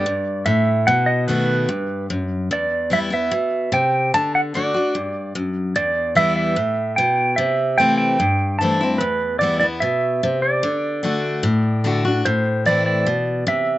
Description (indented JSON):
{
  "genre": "country",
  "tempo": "148 BPM",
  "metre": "4/4",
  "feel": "straight",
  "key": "unclear",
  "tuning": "A4 = 440 Hz",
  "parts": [
    { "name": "pedal steel guitar", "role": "melody", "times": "0.0-13.8 s", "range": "B4 to A5", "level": "-19 LUFS", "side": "right 2 dB", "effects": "slapback echo" },
    { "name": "picked steel-string acoustic guitar", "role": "accompaniment", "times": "0.0-13.8 s", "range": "E2 to F#4", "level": "-20 LUFS", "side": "left 2 dB", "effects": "none" }
  ],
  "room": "little or no reverb",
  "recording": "recorded outdoors, with no room sound, nothing above 7.9 kHz",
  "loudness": "-17 LUFS",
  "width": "side -15 dB against mid",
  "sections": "0.0-13.8 A section",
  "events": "none",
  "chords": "0.0 G5; 0.9 B7; 2.5 Em; 4.1 D; 5.8 Em; 7.4 C6; 9.0 Em; 10.6 D; 12.3 Am",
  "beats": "0.07 0.47 | 0.88 1.29 1.70 2.10 | 2.51 2.92 3.32 3.73 | 4.14 4.54 4.95 5.36 | 5.76 6.17 6.58 6.98 | 7.39 7.79 8.20 8.61 | 9.02 9.42 9.83 10.23 | 10.64 11.05 11.45 11.86 | 12.27 12.67 13.08 13.49"
}